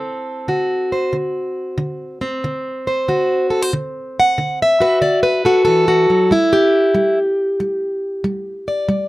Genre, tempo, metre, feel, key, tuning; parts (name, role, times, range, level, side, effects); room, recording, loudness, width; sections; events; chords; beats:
acoustic country blues, solo or duo; 93 BPM; 4/4; swing 66% on 8ths; D mixolydian; A4 = 440 Hz
fingerpicked plugged-in steel-string acoustic guitar; solo; 0.0-9.1 s; D3 to F#5; -15 LUFS; equal
little or no reverb; close, detailed microphones; -15 LUFS; side -18 dB against mid
0.0-9.1 A section
0.0 D7; 6.3 G5
0.49 | 1.13 1.78 2.43 3.08 | 3.73 4.37 5.02 5.67 | 6.32 6.96 7.61 8.26 | 8.90